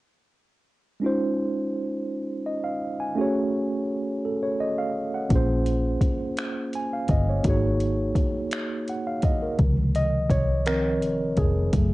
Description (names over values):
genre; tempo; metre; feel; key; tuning
slow six-eight R&B; 56 BPM (dotted quarters); 6/8; straight; Db major; A4 = 440 Hz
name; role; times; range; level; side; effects
tine electric piano; accompaniment; 1.0-11.9 s; C3 to Ab5; -25 LUFS; right 1 dB; medium stereo tremolo
vintage muted fingered electric bass; bass; 5.3-11.9 s; F1 to Db2; -25 LUFS; equal; none
smooth R&B drum kit; drums; 5.3-11.9 s; finger snaps, hi-hat, kick drum; -25 LUFS; equal; none
room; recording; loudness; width
light reverb; worn, warbling old tape, cassette tape, warbly pitch drift, nothing above 10.7 kHz; -22 LUFS; side -19 dB against mid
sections
1.0-9.6 A section; 9.6-11.9 B section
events
tine electric piano solo 9.6-11.9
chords
1.0 Dbmaj7; 3.2 Gbmadd9; 5.3 Bbm9; 7.4 Ab9sus4; 9.6 Dbmaj7